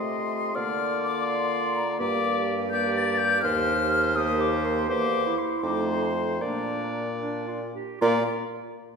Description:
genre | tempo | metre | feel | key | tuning
quick classical-period movement for wind quintet | 73-84 BPM (dotted quarters) | 6/8 | rubato | Bb major | A4 = 439 Hz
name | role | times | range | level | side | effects
mellow silver concert flute | melody | 0.0-8.3 s | Bb5 to A6 | -28 LUFS | left 4 dB | none
clear oboe | second line | 0.0-8.2 s | C5 to Eb5 | -32 LUFS | left 1 dB | none
clear clarinet | accompaniment | 0.0-8.2 s | D4 to G4 | -32 LUFS | right 5 dB | none
mellow French horn | accompaniment | 0.0-8.2 s | A3 to Bb3 | -32 LUFS | left 1 dB | none
clear bassoon | bass | 0.0-8.2 s | Eb2 to D3 | -29 LUFS | right 2 dB | none
room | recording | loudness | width
wet recital hall reverb, RT60 1.7 s | heard from further back in the room | -23 LUFS | side -5 dB against mid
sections
0.0-8.0 A section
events
slowing down 4.2-8.0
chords
0.0 F7/C; 0.6 Bb/D; 2.0 Gm; 3.4 Cm7/Eb; 4.9 C7/E; 5.6 F7; 6.4 Bb

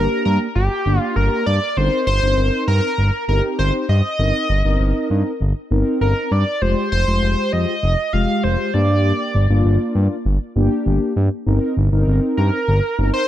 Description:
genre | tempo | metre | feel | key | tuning
pop | 99 BPM | 4/4 | straight | C minor | A4 = 440 Hz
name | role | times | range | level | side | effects
octave-doubled lead | melody | 0.0-13.3 s | G4 to F5 | -21 LUFS | equal | chorus, ping-pong delay
mellow synth brass | accompaniment | 0.0-13.3 s | Ab3 to Bb4 | -22 LUFS | left 1 dB | chorus
smooth synth bass | bass | 0.0-13.1 s | F1 to G2 | -17 LUFS | equal | none
room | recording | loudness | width
light reverb, digital ambience | dark, warm production | -16 LUFS | side -12 dB against mid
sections
0.0-13.3 A section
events
none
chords
0.0 Gm; 1.8 Cm7/G; 6.6 Fmadd9; 8.7 Gm; 11.5 Cm7/G

